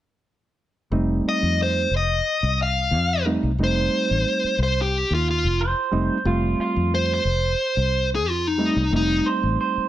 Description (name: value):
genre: blues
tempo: 90 BPM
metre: 4/4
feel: swing 55% on 16ths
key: F mixolydian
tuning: A4 = 439 Hz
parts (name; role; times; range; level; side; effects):
- reed electric piano; accompaniment; 0.9-9.9 s; G3 to F4; -24 LUFS; right 2 dB; none
- fingered electric bass; bass; 0.9-9.8 s; F1 to F2; -23 LUFS; left 1 dB; none
- dark smooth lead guitar; melody; 1.3-9.3 s; Eb4 to F5; -22 LUFS; left 1 dB; overdrive, plate reverb
- electric guitar through a small old amp; second line; 5.6-9.9 s; F4 to C5; -25 LUFS; right 6 dB; plate reverb
room: light reverb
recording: none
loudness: -19 LUFS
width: side -13 dB against mid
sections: 0.9-9.9 A section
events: none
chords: 0.9 F7